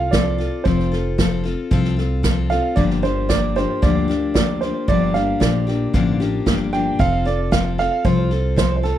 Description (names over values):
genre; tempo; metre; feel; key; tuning
honky-tonk and classic country; 114 BPM; 4/4; straight; G minor; A4 = 439 Hz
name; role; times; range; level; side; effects
warm upright piano; second line; 0.0-9.0 s; A4 to G5; -23 LUFS; right 6 dB; slapback echo
picked steel-string acoustic guitar; accompaniment; 0.0-9.0 s; G2 to A4; -21 LUFS; left 6 dB; none
upright bass; bass; 0.0-8.9 s; F1 to D2; -22 LUFS; right 1 dB; none
unplugged drum kit; drums; 0.1-8.9 s; hi-hat, kick drum, snare drum; -21 LUFS; right 1 dB; none
room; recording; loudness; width
light reverb; none; -16 LUFS; side -11 dB against mid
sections
0.0-9.0 A section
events
upright piano solo 0.0-9.0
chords
0.0 F; 2.8 Gm7; 7.0 F